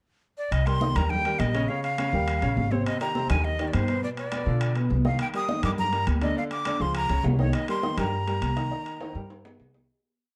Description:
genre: latin, salsa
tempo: 205 BPM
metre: 4/4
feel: straight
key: C minor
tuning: A4 = 440 Hz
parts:
  - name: breathy bright jazz flute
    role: melody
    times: 0.4-9.6 s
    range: C5 to Eb6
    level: -32 LUFS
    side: equal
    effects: plate reverb
  - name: upright bass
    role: bass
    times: 0.5-9.9 s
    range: Ab1 to B2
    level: -28 LUFS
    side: equal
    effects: none
  - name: congas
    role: percussion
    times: 0.5-9.9 s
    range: none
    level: -36 LUFS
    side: equal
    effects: none
  - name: timbales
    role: percussion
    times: 0.5-9.8 s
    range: none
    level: -39 LUFS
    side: equal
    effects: none
  - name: clear baby grand piano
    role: accompaniment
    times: 0.7-9.9 s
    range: B2 to Eb5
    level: -33 LUFS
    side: equal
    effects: none
room: moderate studio reverb, RT60 0.8 s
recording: dark, warm production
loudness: -26 LUFS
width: mono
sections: 0.0-0.5 pickup bar; 0.5-9.9 A section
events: fade-out 8.0-9.9; drum fill 9.0-9.9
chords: 0.0 N.C.; 0.5 Cm7; 1.7 Bbm; 2.3 Eb7; 2.9 Eb6; 4.0 Bdim; 5.2 Ebmaj7; 6.4 Ddim; 7.0 Db69; 7.5 Cm7

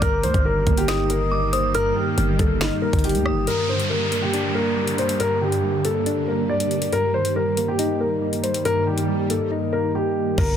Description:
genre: hip hop, drill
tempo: 139 BPM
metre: 4/4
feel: half-time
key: unclear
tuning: A4 = 440 Hz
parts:
  - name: dark grand piano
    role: melody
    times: 0.0-10.6 s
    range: G4 to D5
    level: -23 LUFS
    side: left 2 dB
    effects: low-pass filter
  - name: dark detuned synth bell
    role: second line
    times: 0.0-3.5 s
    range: D6 to F6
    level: -29 LUFS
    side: equal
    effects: chorus, phaser, ping-pong delay
  - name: soft electric-piano-like synth keys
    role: accompaniment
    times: 0.0-10.6 s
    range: G2 to Eb4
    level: -25 LUFS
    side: right 1 dB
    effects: chorus, phaser, low-pass filter
  - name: granular cloud pad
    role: sustained chords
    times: 0.1-10.3 s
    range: G2 to G4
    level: -30 LUFS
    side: equal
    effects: built-in reverb
  - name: growling 808-style bass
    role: bass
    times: 0.0-3.5, 10.4-10.6 s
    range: G1 to D2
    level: -24 LUFS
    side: equal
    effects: none
  - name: drill drum kit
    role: drums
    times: 0.0-10.5 s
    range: crash cymbal, finger snaps, hi-hat, kick drum, rim click, snare drum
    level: -24 LUFS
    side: equal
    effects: soft clipping on snare
  - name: downlifter, swell and impact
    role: sound effects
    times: 3.5-10.6 s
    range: none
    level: -30 LUFS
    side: equal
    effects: none
room: little or no reverb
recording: dense, heavily limited modern master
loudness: -19 LUFS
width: side -9 dB against mid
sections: 0.0-3.5 A section; 3.5-10.4 B section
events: hi-hats muted 10.4; impact 10.4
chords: 0.0 Eb/G; 3.5 Gm; 6.9 Eb/G

